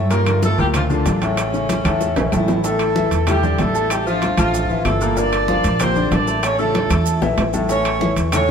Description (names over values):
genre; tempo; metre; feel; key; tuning
latin, salsa; 190 BPM; 4/4; straight; unclear; A4 = 440 Hz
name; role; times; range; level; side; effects
clear concert grand piano; accompaniment; 0.0-8.5 s; A2 to A5; -22 LUFS; left 3 dB; none
upright bass; bass; 0.0-8.5 s; G1 to G2; -21 LUFS; right 1 dB; none
dark horn section; melody; 0.1-8.5 s; C#3 to D5; -20 LUFS; right 1 dB; none
bongos; percussion; 0.1-8.5 s; none; -28 LUFS; left 4 dB; none
congas; percussion; 0.1-8.5 s; none; -27 LUFS; left 1 dB; none
maracas; percussion; 0.1-8.5 s; none; -34 LUFS; right 6 dB; none
timbales; percussion; 0.1-8.5 s; none; -28 LUFS; right 4 dB; none
claves; percussion; 0.3-8.5 s; none; -36 LUFS; left 7 dB; none
room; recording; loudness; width
moderate plate reverb, RT60 3.7 s; heard from further back in the room; -16 LUFS; side -7 dB against mid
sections
0.0-2.6 A section; 2.6-8.5 B section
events
drum fill 2.0-2.6, 6.7-7.7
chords
0.1 Gm7; 1.4 A; 2.6 Asus4; 3.9 Dmadd9/A; 5.2 Gm7; 6.4 A